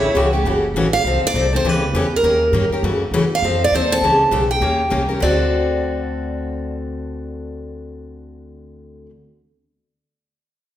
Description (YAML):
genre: acoustic string swing (jazz manouche)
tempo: 202 BPM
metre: 4/4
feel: swing 58% on 8ths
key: D mixolydian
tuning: A4 = 440 Hz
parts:
  - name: picked steel-string acoustic guitar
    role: melody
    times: 0.0-9.1 s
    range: Bb4 to A5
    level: -19 LUFS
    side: right 1 dB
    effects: none
  - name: warm violin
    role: second line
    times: 0.0-0.5 s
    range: E4 to G4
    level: -26 LUFS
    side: right 4 dB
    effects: none
  - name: picked steel-string acoustic guitar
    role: accompaniment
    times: 0.0-9.1 s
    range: C#3 to Bb4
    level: -20 LUFS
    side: left 2 dB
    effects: none
  - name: upright bass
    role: bass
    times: 0.0-9.1 s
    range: F#1 to G2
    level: -23 LUFS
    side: equal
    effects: none
room: wet recital hall reverb, RT60 1.2 s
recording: recorded in a church or concert hall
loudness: -16 LUFS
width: side -11 dB against mid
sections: 0.4-5.2 A section; 5.2-7.6 B section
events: none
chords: 0.4 F#m7; 1.0 F7; 1.6 A9; 2.2 Eb7; 2.8 F#m7; 3.4 F7; 4.0 A9; 4.6 Eb6; 5.2 D7